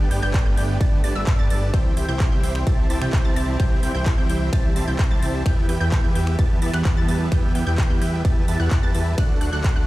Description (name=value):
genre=EDM, festival progressive house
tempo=129 BPM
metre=4/4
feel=straight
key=unclear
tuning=A4 = 440 Hz
part: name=rich symphonic string section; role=sustained chords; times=0.0-9.9 s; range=D3 to C4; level=-30 LUFS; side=right 2 dB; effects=sidechain pumping
part: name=wide unison pluck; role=arpeggios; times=0.0-9.9 s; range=E6 to A6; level=-32 LUFS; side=equal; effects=analog chorus, sidechain pumping, dub echo
part: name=dense compressed supersaw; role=riff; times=0.0-9.9 s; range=D4 to A5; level=-28 LUFS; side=equal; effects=sidechain pumping, dub echo
part: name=fat analog bass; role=bass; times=0.0-9.9 s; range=G1 to E2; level=-24 LUFS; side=equal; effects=sidechain pumping
part: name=big-room dance drum kit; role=drums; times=0.1-9.7 s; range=finger snaps, handclaps, hi-hat, ride cymbal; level=-34 LUFS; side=equal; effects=none
part: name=electronic kick drum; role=drums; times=0.3-9.7 s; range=none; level=-20 LUFS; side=equal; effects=overdrive
room=little or no reverb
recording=played on a big sound system in a bare room, stone room reverb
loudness=-18 LUFS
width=side -17 dB against mid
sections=0.0-9.9 A section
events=none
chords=0.0 G; 1.7 C; 5.5 Em; 9.2 D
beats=0.34 0.81 1.27 | 1.74 2.20 2.67 3.13 | 3.60 4.06 4.53 4.99 | 5.46 5.92 6.39 6.85 | 7.32 7.78 8.25 8.71 | 9.18 9.64